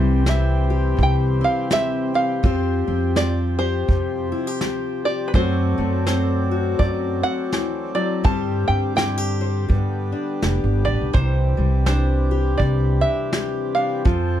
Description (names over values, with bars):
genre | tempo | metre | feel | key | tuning
acoustic folk duo or small band | 83 BPM | 4/4 | swing 60% on 8ths | C major | A4 = 440 Hz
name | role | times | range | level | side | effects
open-back banjo | melody | 0.0-14.4 s | B4 to A5 | -25 LUFS | right 2 dB | none
fingerpicked steel-string acoustic guitar | accompaniment | 0.0-14.4 s | C3 to C5 | -24 LUFS | left 4 dB | none
pedal harmonium | sustained chords | 0.0-14.4 s | D3 to D5 | -29 LUFS | right 2 dB | none
upright bass | bass | 0.0-14.4 s | F1 to G2 | -21 LUFS | right 1 dB | none
soft brush drum kit | drums | 0.3-14.3 s | kick drum, snare drum | -21 LUFS | right 1 dB | none
room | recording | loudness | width
light reverb | dark, warm production | -18 LUFS | side -11 dB against mid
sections
0.0-14.4 A section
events
none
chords
0.0 C; 2.4 Fsus2; 5.3 D7/F#; 8.2 Gsus4; 9.7 G; 11.2 Cadd9